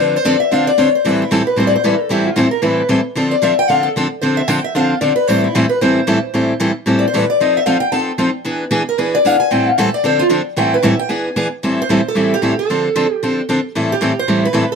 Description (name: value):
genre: jazz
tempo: 227 BPM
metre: 4/4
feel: swing 57% on 8ths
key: A minor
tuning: A4 = 441 Hz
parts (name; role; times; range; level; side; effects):
- picked acoustic archtop guitar; melody; 0.0-14.8 s; E4 to A5; -16 LUFS; left 1 dB; none
- picked steel-string acoustic guitar; accompaniment; 0.0-14.6 s; A2 to A4; -15 LUFS; equal; none
room: light reverb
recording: close, detailed microphones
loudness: -13 LUFS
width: side -5 dB against mid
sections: 0.0-11.6 A section; 11.6-14.8 B section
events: steel-string acoustic guitar solo 0.0-11.6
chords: 0.0 Dm7; 1.0 Am7; 3.2 Dm7; 5.3 Am7; 7.4 F7; 8.5 E7; 9.5 Am7; 10.0 Dm7; 10.6 Am7; 11.1 E7; 11.6 Am7; 12.7 Dm7; 13.7 Am7